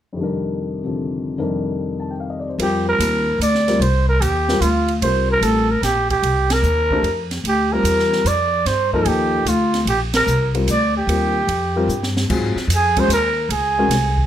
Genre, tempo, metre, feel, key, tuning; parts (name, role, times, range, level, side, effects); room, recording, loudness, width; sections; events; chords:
modal jazz; 148 BPM; 3/4; swing 67% on 8ths; F mixolydian; A4 = 440 Hz
dark upright piano; accompaniment; 0.1-13.9 s; F2 to A5; -22 LUFS; left 3 dB
growling trumpet; melody; 2.6-14.3 s; F4 to D5; -18 LUFS; right 2 dB
upright bass; bass; 2.6-14.3 s; A1 to Ab2; -20 LUFS; left 1 dB
open jazz drum kit; drums; 2.6-14.2 s; crash cymbal, hi-hat, kick drum, ride cymbal, snare drum; -26 LUFS; right 2 dB
light reverb; -16 LUFS; side -10 dB against mid
0.2-2.6 A section; 2.6-12.3 B section; 12.3-14.3 C section
band accent 6.4, 10.1; drum fill 11.9-12.3
0.2 F13sus4; 7.4 Gm; 11.1 Eb; 12.3 Ab7sus4